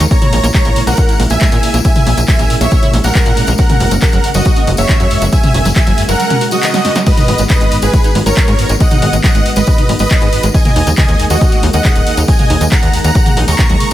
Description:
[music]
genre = uplifting trance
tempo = 138 BPM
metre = 4/4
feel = straight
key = G# minor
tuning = A4 = 440 Hz
[part]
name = big supersaw lead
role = melody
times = 0.0-13.9 s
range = F#4 to C#6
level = -16 LUFS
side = right 1 dB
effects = sidechain pumping, tape echo
[part]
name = lush unison pad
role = sustained chords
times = 0.0-13.9 s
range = C#3 to G#4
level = -21 LUFS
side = equal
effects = chorus, sidechain pumping
[part]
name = liquid acid bass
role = arpeggios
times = 0.0-13.9 s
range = D#2 to F#4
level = -20 LUFS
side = right 2 dB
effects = phaser, lush chorus, sidechain pumping, tape echo
[part]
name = tight sequencer bass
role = bass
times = 0.0-13.8 s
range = D#1 to A#2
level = -14 LUFS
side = equal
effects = sidechain pumping
[part]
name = punchy analog drum machine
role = drums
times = 0.0-13.9 s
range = crash cymbal, handclaps, hi-hat, snare drum, toms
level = -19 LUFS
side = left 1 dB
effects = none
[part]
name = tambourine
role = percussion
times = 0.0-13.9 s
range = none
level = -25 LUFS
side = left 4 dB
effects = none
[part]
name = electronic kick drum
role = drums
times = 0.1-13.7 s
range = none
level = -12 LUFS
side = equal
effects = none
[sound]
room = digital ambience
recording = none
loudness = -9 LUFS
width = side -13 dB against mid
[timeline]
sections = 0.0-13.9 A section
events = drum fill 6.7-7.1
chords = 0.1 A#m7b5; 3.6 F#add9; 7.1 G#m7; 10.5 D#sus4

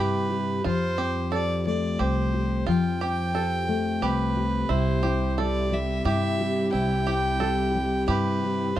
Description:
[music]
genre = acoustic folk duo or small band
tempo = 89 BPM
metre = 3/4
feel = straight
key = C major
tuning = A4 = 439 Hz
[part]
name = warm fiddle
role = melody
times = 0.0-8.8 s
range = B4 to G5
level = -29 LUFS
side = right 1 dB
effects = tape echo
[part]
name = fingerpicked steel-string acoustic guitar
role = accompaniment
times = 0.0-8.8 s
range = C3 to G4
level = -28 LUFS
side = left 4 dB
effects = none
[part]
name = bluegrass banjo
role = arpeggios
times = 0.0-8.8 s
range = E4 to A4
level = -32 LUFS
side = right 4 dB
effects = none
[part]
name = upright bass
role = bass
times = 0.0-8.8 s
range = C2 to G2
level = -27 LUFS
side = right 1 dB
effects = none
[part]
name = dark chamber string section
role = sustained chords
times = 4.7-8.8 s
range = G3 to G4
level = -32 LUFS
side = equal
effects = none
[sound]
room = little or no reverb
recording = dry, close 1970s-style studio recording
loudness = -23 LUFS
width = side -12 dB against mid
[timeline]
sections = 0.0-8.8 A section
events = none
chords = 0.0 C; 0.6 Fadd9; 4.7 C

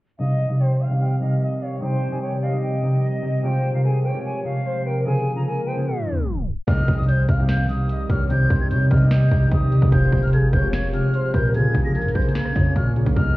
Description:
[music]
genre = hip hop, trap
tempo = 148 BPM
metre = 4/4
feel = half-time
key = C phrygian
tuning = A4 = 443 Hz
[part]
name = silver concert flute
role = melody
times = 0.2-13.4 s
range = Eb5 to Bb6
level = -30 LUFS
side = equal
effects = low-pass filter, tape echo
[part]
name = gliding portamento lead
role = second line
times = 0.2-13.4 s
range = Ab4 to F5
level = -30 LUFS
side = left 1 dB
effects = chorus, tape echo
[part]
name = concert harp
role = accompaniment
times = 0.2-13.4 s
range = C3 to Bb4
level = -21 LUFS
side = equal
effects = low-pass filter
[part]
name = warbly tape-like pad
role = sustained chords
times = 0.8-13.4 s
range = C3 to Ab4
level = -30 LUFS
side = right 1 dB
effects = chorus, built-in reverb, phaser, low-pass filter
[part]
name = reverse cymbal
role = sound effects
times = 5.9-6.7 s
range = none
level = -48 LUFS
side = right 4 dB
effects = none
[part]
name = warm 808-style bass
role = bass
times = 6.7-13.4 s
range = F1 to C3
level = -22 LUFS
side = equal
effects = none
[part]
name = trap drum kit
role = drums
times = 6.7-13.3 s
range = finger snaps, hi-hat, kick drum, rim click, snare drum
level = -22 LUFS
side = equal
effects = overdrive
[sound]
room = digital ambience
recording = heard muffled through a wall, stone room reverb, EQ, tape stop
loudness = -18 LUFS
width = side -18 dB against mid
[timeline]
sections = 0.2-6.7 A section; 6.7-13.4 B section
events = filter sweep 0.2-6.7; tape stop 5.9-6.7; reverse cymbal 5.9-6.7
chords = 0.2 Cm; 3.4 Fmadd9; 5.1 Bbm7; 6.7 Cm; 9.9 Fmadd9; 11.5 Bbm7

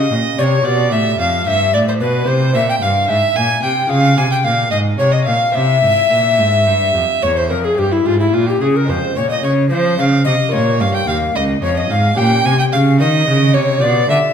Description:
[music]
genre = classical, baroque-style sonata movement with continuo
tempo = 73 BPM (dotted quarters)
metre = 12/8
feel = straight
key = unclear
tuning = A4 = 439 Hz
[part]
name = tenor recorder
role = melody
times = 0.0-14.3 s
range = E4 to Ab5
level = -17 LUFS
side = left 6 dB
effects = none
[part]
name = warm violin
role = second line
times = 0.0-14.2 s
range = E4 to Ab5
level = -18 LUFS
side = right 5 dB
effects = none
[part]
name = lute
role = accompaniment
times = 0.0-14.3 s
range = Eb2 to C5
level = -21 LUFS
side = left 1 dB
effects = none
[part]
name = rich cello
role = bass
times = 0.0-14.2 s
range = Db2 to F3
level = -17 LUFS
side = right 2 dB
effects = none
[sound]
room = wet recital hall reverb, RT60 1.6 s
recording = none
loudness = -12 LUFS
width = side -7 dB against mid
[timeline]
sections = 0.0-14.3 A section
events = none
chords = 0.0 Gdim/Bb; 0.6 G7; 2.3 C; 3.9 Db; 5.5 C; 8.9 Fm; 10.5 Bbm; 12.2 Gdim/Bb; 13.8 G7/B

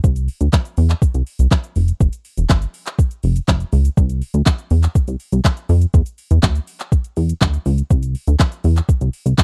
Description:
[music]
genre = dance-pop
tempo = 122 BPM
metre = 4/4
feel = straight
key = C major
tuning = A4 = 442 Hz
[part]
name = plucky analog bass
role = bass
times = 0.0-9.3 s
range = E1 to F2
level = -17 LUFS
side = equal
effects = sidechain pumping
[part]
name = smooth R&B drum kit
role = drums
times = 0.0-9.4 s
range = handclaps, hi-hat, kick drum, shaker, snare drum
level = -17 LUFS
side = equal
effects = overdrive
[sound]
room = little or no reverb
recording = dry, close 1970s-style studio recording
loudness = -17 LUFS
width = mono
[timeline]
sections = 0.0-9.4 A section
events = drop 0.0-9.4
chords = none

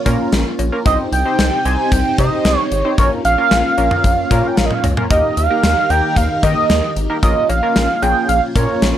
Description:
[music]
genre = synth-pop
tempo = 113 BPM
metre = 4/4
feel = straight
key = unclear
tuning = A4 = 440 Hz
[part]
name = octave-doubled lead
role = melody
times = 0.0-9.0 s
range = Db5 to Ab5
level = -17 LUFS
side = right 2 dB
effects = chorus, phaser
[part]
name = string machine, full ensemble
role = sustained chords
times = 0.0-9.0 s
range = C3 to Bb4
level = -23 LUFS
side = left 1 dB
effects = ensemble chorus
[part]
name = funky polysynth comp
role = accompaniment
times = 0.1-9.0 s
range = Bb3 to C5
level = -22 LUFS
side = equal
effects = chorus
[part]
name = rubbery square bass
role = bass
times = 0.1-8.9 s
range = Ab1 to Eb3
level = -19 LUFS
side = left 1 dB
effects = none
[part]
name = gated 80s drum kit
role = drums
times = 0.1-8.9 s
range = cowbell, hi-hat, kick drum, snare drum, toms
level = -18 LUFS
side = left 1 dB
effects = none
[sound]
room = light reverb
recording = none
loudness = -13 LUFS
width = side -11 dB against mid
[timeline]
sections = 0.0-9.0 A section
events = none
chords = 0.0 Bbm; 0.9 Cm; 3.0 Bbm; 5.1 Eb; 7.2 Bbm

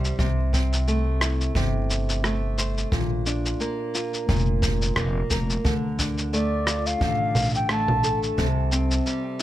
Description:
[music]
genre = folktronica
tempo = 88 BPM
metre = 4/4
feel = swing 56% on 16ths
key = D minor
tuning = A4 = 439 Hz
[part]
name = nylon-string guitar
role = arpeggios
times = 0.0-9.4 s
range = Bb2 to C5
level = -28 LUFS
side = equal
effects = low-pass filter, tape echo
[part]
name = upright bass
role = bass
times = 0.0-9.0 s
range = F1 to D2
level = -25 LUFS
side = equal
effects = none
[part]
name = electronic shaker, rim click and congas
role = drums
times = 0.0-9.4 s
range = none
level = -27 LUFS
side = equal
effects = none
[part]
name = kick drum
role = drums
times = 0.2-8.5 s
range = none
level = -27 LUFS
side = left 1 dB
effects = none
[part]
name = baroque flute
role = melody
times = 6.3-8.2 s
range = D5 to A5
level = -27 LUFS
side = equal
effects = tape echo
[sound]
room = light reverb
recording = none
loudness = -21 LUFS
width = side -14 dB against mid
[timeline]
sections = 0.0-9.4 A section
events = none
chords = 0.2 Am/C; 2.9 Bb; 5.7 Dm; 8.4 C5

